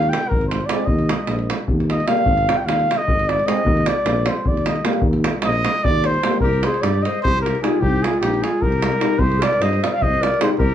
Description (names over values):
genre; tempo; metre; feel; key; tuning
balkan folk, Balkan brass band; 303 BPM (eighths); 7/8; straight; Eb major, C minor from 6.4 s; A4 = 440 Hz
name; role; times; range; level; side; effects
dark trumpet; melody; 0.0-10.7 s; G4 to G5; -21 LUFS; equal; none
mellow tuba; bass; 0.0-10.7 s; Ab1 to G2; -22 LUFS; equal; none
davul; percussion; 0.0-10.7 s; none; -22 LUFS; right 1 dB; none
mellow euphonium; accompaniment; 0.7-10.6 s; Bb3 to Eb4; -24 LUFS; left 6 dB; none
warm trombone; accompaniment; 0.7-10.6 s; G3 to Ab3; -27 LUFS; right 4 dB; none
mellow clarinet; second line; 6.4-10.7 s; Eb4 to D5; -25 LUFS; left 3 dB; analog delay
room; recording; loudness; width
wet studio ambience, RT60 0.5 s; heard from further back in the room; -16 LUFS; side -10 dB against mid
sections
0.0-6.4 A section; 6.4-10.7 B section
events
trumpet solo 0.0-6.4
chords
0.0 Ab; 0.9 Eb5; 2.3 Ab5; 3.7 Eb5; 6.4 Cm; 7.8 Eb; 9.2 Cm